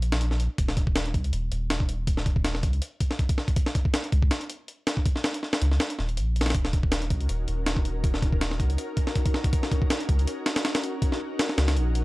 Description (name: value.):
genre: drum and bass, jungle.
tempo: 161 BPM.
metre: 4/4.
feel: swing 54% on 16ths.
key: Eb minor.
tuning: A4 = 440 Hz.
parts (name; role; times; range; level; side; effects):
soft dub sub bass; bass; 0.0-12.0 s; Eb1 to Db2; -26 LUFS; equal; tube saturation.
breakbeat sampler-style drum kit; drums; 0.0-12.0 s; hi-hat, kick drum, snare drum; -25 LUFS; equal; studio reverb.
ethereal airy pad; sustained chords; 6.5-12.0 s; Db4 to Bb4; -33 LUFS; left 1 dB; ensemble chorus, built-in reverb.
room: digital ambience.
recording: dry, gritty hardware recording, cassette tape.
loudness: -23 LUFS.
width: side -20 dB against mid.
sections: 0.0-12.0 A section.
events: none.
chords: 0.0 Ebm7.